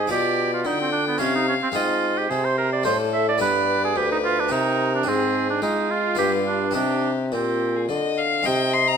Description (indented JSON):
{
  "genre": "classical, baroque-style sonata movement with continuo",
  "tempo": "109 BPM",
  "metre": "3/4",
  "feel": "straight",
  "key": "C minor",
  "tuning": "A4 = 441 Hz",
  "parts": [
    { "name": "rich violin", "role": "melody", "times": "0.0-9.0 s", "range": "F4 to C6", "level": "-26 LUFS", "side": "left 7 dB", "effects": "none" },
    { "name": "warm oboe", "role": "second line", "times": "0.0-9.0 s", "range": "B3 to E5", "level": "-23 LUFS", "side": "right 6 dB", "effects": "none" },
    { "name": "harpsichord", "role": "accompaniment", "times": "0.0-9.0 s", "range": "D2 to F4", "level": "-29 LUFS", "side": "left 4 dB", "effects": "none" },
    { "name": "dark bassoon", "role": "bass", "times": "0.0-9.0 s", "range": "D2 to Ab3", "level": "-25 LUFS", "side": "equal", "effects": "none" }
  ],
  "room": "moderate recital hall reverb, RT60 1.4 s",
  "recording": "none",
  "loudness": "-19 LUFS",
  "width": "side -7 dB against mid",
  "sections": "0.0-8.5 A section",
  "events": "none",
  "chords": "0.1 G7/B; 1.2 Cm; 1.8 Ab; 2.9 D5/A; 3.4 G; 4.5 Cm; 5.1 Fm/Ab; 6.2 G7; 6.7 Cm",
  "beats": "| 0.10 0.65 1.21 | 1.76 2.31 2.86 | 3.41 3.96 4.52 | 5.07 5.62 6.18 | 6.75 7.32 7.89 | 8.45"
}